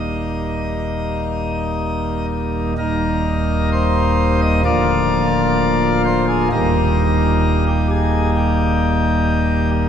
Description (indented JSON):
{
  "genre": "classical, chorale-style piece for pipe organ",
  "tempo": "64 BPM",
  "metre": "4/4",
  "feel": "straight",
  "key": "Eb major",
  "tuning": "A4 = 443 Hz",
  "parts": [
    { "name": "pipe organ, principal chorus", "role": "solo", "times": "0.0-9.9 s", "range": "D1 to Eb5", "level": "-15 LUFS", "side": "equal", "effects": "none" }
  ],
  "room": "wet cathedral reverb, RT60 4.6 s",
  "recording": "minimal, uncompressed stereo recording",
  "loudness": "-15 LUFS",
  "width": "side -8 dB against mid",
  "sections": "0.0-2.8 A section; 2.8-9.9 A section",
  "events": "none",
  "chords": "0.0 Eb; 4.7 Bb/D; 6.5 Eb",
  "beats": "0.84 1.81 | 2.78 3.72 4.65 5.59 | 6.52 7.45 8.37 9.28"
}